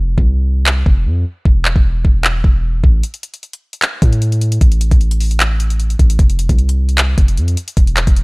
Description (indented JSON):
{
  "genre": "hip hop, trap",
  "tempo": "152 BPM",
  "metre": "4/4",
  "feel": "half-time",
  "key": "unclear",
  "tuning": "A4 = 440 Hz",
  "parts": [
    { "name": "long sustained 808-style bass", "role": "bass", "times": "0.0-8.2 s", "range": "E1 to A2", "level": "-14 LUFS", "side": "equal", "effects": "none" },
    { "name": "trap drum kit", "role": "drums", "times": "0.2-8.2 s", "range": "handclaps, hi-hat, kick drum", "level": "-13 LUFS", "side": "equal", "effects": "none" }
  ],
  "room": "little or no reverb",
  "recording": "dry, gritty hardware recording",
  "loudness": "-11 LUFS",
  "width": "side -31 dB against mid",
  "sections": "0.0-8.2 A section",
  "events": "break 0.0-3.0, 3.0-3.8",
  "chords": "none",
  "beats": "0.27 0.67 1.06 | 1.46 1.85 2.24 2.64 | 3.03 3.43 3.82 4.22 | 4.61 5.01 5.40 5.80 | 6.19 6.59 6.98 7.38 | 7.77 8.16"
}